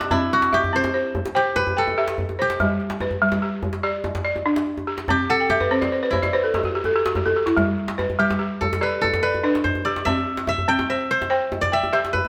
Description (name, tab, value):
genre	west african traditional, West African string and xylophone music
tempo	96 BPM (dotted quarters)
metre	12/8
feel	straight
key	unclear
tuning	A4 = 445 Hz
part	kora	melody	0.0-12.3 s	C4 to G5	-25 LUFS	equal	none
part	balafon	arpeggios	0.0-12.3 s	G3 to G5	-24 LUFS	equal	none
part	djembe	percussion	0.0-12.3 s	none	-31 LUFS	equal	none
room	wet stone room reverb, RT60 1.1 s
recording	band playing live in one room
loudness	-22 LUFS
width	mono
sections	0.0-12.3 A section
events	kora solo 0.0-12.3; balafon fill 5.3-7.6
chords	0.1 C; 2.6 G; 5.1 C; 7.6 G; 10.1 C